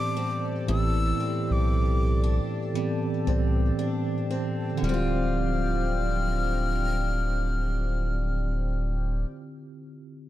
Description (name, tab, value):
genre	contemporary R&B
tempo	58 BPM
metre	4/4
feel	swing 58% on 16ths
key	D dorian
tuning	A4 = 440 Hz
part	breathy concert flute	melody	0.0-9.3 s	D6 to F6	-33 LUFS	left 3 dB	digital delay
part	mellow tine electric piano	accompaniment	0.0-10.3 s	A2 to D5	-30 LUFS	right 1 dB	medium stereo tremolo
part	chorused pulse-width pad	sustained chords	0.0-9.2 s	F3 to A5	-36 LUFS	left 1 dB	none
part	picked steel-string acoustic guitar	arpeggios	0.0-9.4 s	A2 to F4	-34 LUFS	left 1 dB	digital delay
part	warm sub bass	bass	0.7-9.2 s	D1 to C2	-26 LUFS	equal	none
room	small room reverb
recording	dark, warm production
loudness	-24 LUFS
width	side -14 dB against mid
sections	0.0-4.8 A section; 4.8-9.0 B section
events	none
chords	0.0 Am11; 4.8 Dm11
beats	| 0.68 1.72 2.75 3.79 | 4.82 5.86 6.89 7.92